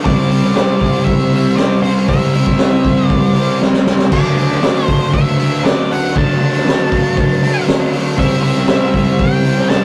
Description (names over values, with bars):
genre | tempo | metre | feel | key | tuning
garage rock duo or trio | 118 BPM | 4/4 | straight | unclear | A4 = 440 Hz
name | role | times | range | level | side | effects
crunchy overdriven guitar | riff | 0.0-9.8 s | C3 to E4 | -17 LUFS | equal | none
octave-fuzz lead guitar | melody | 0.1-9.8 s | C5 to A5 | -24 LUFS | equal | distortion
crunchy breakbeat drum kit | drums | 0.1-9.8 s | crash cymbal, hi-hat, kick drum, snare drum | -17 LUFS | equal | none
room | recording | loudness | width
moderate stone room reverb, RT60 1.0 s | rough rehearsal-room recording, tube saturation | -14 LUFS | mono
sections
0.0-9.8 A section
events
drum fill 3.6-4.1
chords
0.1 C; 4.1 D; 8.2 C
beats
| 0.05 0.56 1.07 1.58 | 2.08 2.59 3.10 3.61 | 4.12 4.63 5.13 5.64 | 6.15 6.66 7.16 7.67 | 8.18 8.68 9.19 9.70